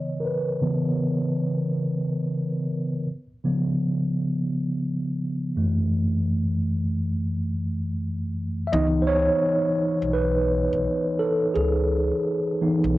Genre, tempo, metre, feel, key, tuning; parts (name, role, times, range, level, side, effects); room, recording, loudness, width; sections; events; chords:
lo-fi hip hop; 85 BPM; 4/4; swing 66% on 16ths; C# minor; A4 = 440 Hz
mellow tine electric piano; accompaniment; 0.0-13.0 s; F#2 to E5; -22 LUFS; equal; medium stereo tremolo, cassette tape, low-pass filter
upright bass; bass; 8.7-13.0 s; B1 to C#2; -26 LUFS; equal
wet studio reverb, RT60 0.6 s; home recording on cassette; -22 LUFS; side -17 dB against mid
0.0-8.7 A section; 8.7-13.0 B section
tine electric piano solo 0.0-8.7, 8.7-13.0; filter sweep on tine electric piano 0.0-8.7
0.0 C#m9; 3.1 C#7; 5.5 F#m7; 8.7 C#m9